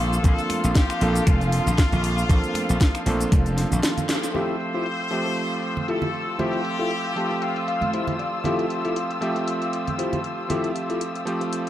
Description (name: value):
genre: nu-disco, nu disco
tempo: 117 BPM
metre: 4/4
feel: swing 55% on 16ths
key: F major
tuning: A4 = 440 Hz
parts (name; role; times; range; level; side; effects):
- muted trumpet section; melody; 0.0-8.2 s; F4 to C5; -31 LUFS; left 2 dB; dub echo
- clear electric grand piano; accompaniment; 0.0-11.7 s; F3 to E5; -27 LUFS; right 2 dB; sidechain pumping, low-pass filter
- muted studio string section; sustained chords; 0.0-11.7 s; F4 to E6; -30 LUFS; left 2 dB; vintage 12-bit sampler grit, sidechain pumping
- slap bass; bass; 0.0-3.8 s; F1 to Bb1; -23 LUFS; equal; none
- house drum kit; drums; 0.1-11.7 s; finger snaps, hi-hat, shaker, snare drum; -29 LUFS; equal; overdrive, low-pass filter on perc, low-pass filter on hats, low-pass filter on snare
- electronic kick drum; drums; 0.2-3.4 s; none; -18 LUFS; equal; overdrive
- congas; percussion; 0.2-10.6 s; none; -32 LUFS; right 3 dB; none
- mellow electric guitar; riff; 4.3-11.6 s; E4 to A5; -29 LUFS; left 3 dB; wide subtle chorus, low-pass filter
room: moderate lush hall reverb, RT60 1.6 s, digital ambience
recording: dark, warm production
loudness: -21 LUFS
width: side -12 dB against mid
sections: 0.0-4.3 A section; 4.3-11.7 B section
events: break 3.8-4.3; drum fill 4.1; band accent 4.1; filter sweep on drum 4.3-11.7; clean electric guitar fill 6.9-8.4, 11.5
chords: 0.0 Bbmaj7; 4.3 Fmaj9